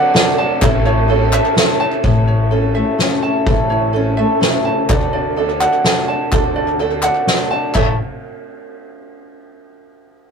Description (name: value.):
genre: indie folk with a building arrangement.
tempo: 126 BPM.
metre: 3/4.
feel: straight.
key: A major.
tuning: A4 = 441 Hz.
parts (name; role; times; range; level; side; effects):
felt-muted upright piano; accompaniment; 0.0-2.1, 4.9-8.0 s; A1 to E5; -23 LUFS; right 3 dB; none.
picked twelve-string acoustic guitar; accompaniment; 0.0-8.0 s; A2 to A4; -22 LUFS; left 3 dB; none.
ukulele; arpeggios; 0.0-8.0 s; A4 to A5; -19 LUFS; right 3 dB; none.
soft-mallet drum kit; drums; 0.1-7.9 s; crash cymbal, kick drum, ride cymbal, snare drum; -18 LUFS; equal; none.
group handclap; percussion; 0.1-2.0, 4.9-8.0 s; none; -25 LUFS; left 2 dB; none.
upright bass; bass; 0.6-8.0 s; A1 to D2; -20 LUFS; left 2 dB; none.
fingerpicked steel-string acoustic guitar; accompaniment; 2.0-4.9 s; A2 to C#5; -19 LUFS; left 2 dB; none.
room: light reverb.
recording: rough rehearsal-room recording, tube saturation.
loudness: -13 LUFS.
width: side -6 dB against mid.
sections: 0.0-2.0 A section; 2.0-7.8 B section; 7.8-9.2 C section.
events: none.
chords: 0.0 D; 0.6 A; 4.9 D; 7.8 A.